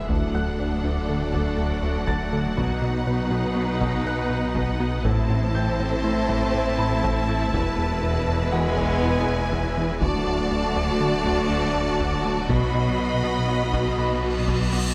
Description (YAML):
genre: cinematic, hybrid orchestral and electronic film score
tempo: 121 BPM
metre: 5/4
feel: straight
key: unclear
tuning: A4 = 440 Hz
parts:
  - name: clear symphonic violin section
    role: melody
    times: 0.0-14.8 s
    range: F#5 to B5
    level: -34 LUFS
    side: equal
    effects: none
  - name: warm studio violin section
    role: second line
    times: 0.0-14.8 s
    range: A4 to D#5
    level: -34 LUFS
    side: equal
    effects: none
  - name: rich symphonic viola section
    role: accompaniment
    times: 0.0-14.7 s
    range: D4 to F#4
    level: -35 LUFS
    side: equal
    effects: none
  - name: sweeping resonant pad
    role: sustained chords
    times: 0.0-14.9 s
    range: F#3 to E5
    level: -35 LUFS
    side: equal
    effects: chorus
  - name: warm French horn section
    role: sustained chords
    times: 0.0-14.7 s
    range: F#3 to D#4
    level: -35 LUFS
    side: equal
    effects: none
  - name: clear symphonic cello section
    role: bass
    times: 0.0-14.7 s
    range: D2 to B2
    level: -31 LUFS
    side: equal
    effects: none
  - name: pure sine sub bass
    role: bass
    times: 0.0-14.9 s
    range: D1 to B1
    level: -34 LUFS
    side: equal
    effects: none
  - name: rich symphonic double bass section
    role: bass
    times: 0.0-14.7 s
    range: E1 to D2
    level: -32 LUFS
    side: equal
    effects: none
  - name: clear grand piano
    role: texture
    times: 0.0-14.9 s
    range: F#4 to A6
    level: -40 LUFS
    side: equal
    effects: none
  - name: tight sequenced synth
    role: arpeggios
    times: 0.1-14.9 s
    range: D3 to B4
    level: -39 LUFS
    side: equal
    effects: none
  - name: rubbery square bass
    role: riff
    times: 0.1-14.9 s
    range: D2 to B3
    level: -31 LUFS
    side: equal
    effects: none
  - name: taiko ensemble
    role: drums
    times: 0.1-14.9 s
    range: none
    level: -33 LUFS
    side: equal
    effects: none
  - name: cymbal swell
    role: sound effects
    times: 13.8-14.9 s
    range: none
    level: -35 LUFS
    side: equal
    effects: none
room: moderate scoring stage reverb, RT60 1.5 s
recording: none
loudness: -23 LUFS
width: mono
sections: 0.0-14.9 A section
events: cymbal swell 13.9-14.9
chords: 0.1 D; 2.6 B; 5.1 Am; 7.5 E; 10.0 D; 12.5 B